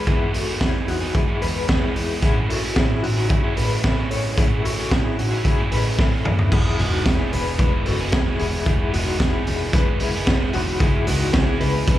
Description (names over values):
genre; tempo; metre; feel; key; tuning
jangly indie pop; 112 BPM; 4/4; straight; E major; A4 = 440 Hz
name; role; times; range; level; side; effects
crunchy overdriven guitar; accompaniment; 0.0-12.0 s; C#3 to G#4; -27 LUFS; right 5 dB; slapback echo
electric guitar through a small old amp; arpeggios; 0.0-12.0 s; D#4 to C#5; -26 LUFS; left 4 dB; tremolo, ping-pong delay, slapback echo
rich double bass; bass; 0.0-12.0 s; E1 to E2; -25 LUFS; equal; none
raw garage drum kit; drums; 0.1-12.0 s; crash cymbal, hi-hat, kick drum, snare drum, toms; -20 LUFS; equal; none
room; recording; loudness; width
little or no reverb; live gig heard through the venue's PA, club reverb; -18 LUFS; side -13 dB against mid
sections
0.0-6.5 A section; 6.5-12.0 B section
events
drum fill 6.0-6.5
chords
0.0 Emaj7; 2.2 Amaj7; 6.5 Emaj7; 10.8 C#m7